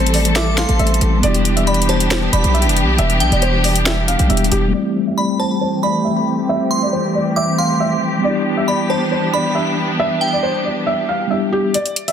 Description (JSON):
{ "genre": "hip hop, trap", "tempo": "137 BPM", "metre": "4/4", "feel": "half-time", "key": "A minor", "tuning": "A4 = 440 Hz", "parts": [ { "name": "felt-muted upright piano", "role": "melody", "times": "0.0-12.1 s", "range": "G4 to F5", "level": "-21 LUFS", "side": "equal", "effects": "low-pass filter, ping-pong delay" }, { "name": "mellow tine electric piano", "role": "accompaniment", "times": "0.0-11.8 s", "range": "G3 to G4", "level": "-21 LUFS", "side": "left 1 dB", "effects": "medium stereo tremolo, low-pass filter" }, { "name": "warm symphonic string section", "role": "sustained chords", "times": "0.0-11.7 s", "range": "E3 to A4", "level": "-21 LUFS", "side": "equal", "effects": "low-pass filter" }, { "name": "distorted 808-style bass", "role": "bass", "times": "0.0-4.7 s", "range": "E1 to B1", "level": "-17 LUFS", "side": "equal", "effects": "distortion" }, { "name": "trap drum kit", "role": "drums", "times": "0.1-4.6, 11.7-12.1 s", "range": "finger snaps, hi-hat, snare drum", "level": "-20 LUFS", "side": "equal", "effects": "overdrive" }, { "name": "glassy synth bell", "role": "second line", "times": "0.4-10.4 s", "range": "G5 to D6", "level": "-23 LUFS", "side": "right 1 dB", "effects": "chorus, phaser, ping-pong delay" } ], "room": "light reverb, digital ambience", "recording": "dense, heavily limited modern master", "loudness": "-14 LUFS", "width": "side -8 dB against mid", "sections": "0.0-4.7 A section; 4.7-11.7 B section", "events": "filter sweep 4.7-11.7; break 11.7-12.1", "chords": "0.0 Am7; 1.2 Em7; 4.7 Am7; 8.2 Em7" }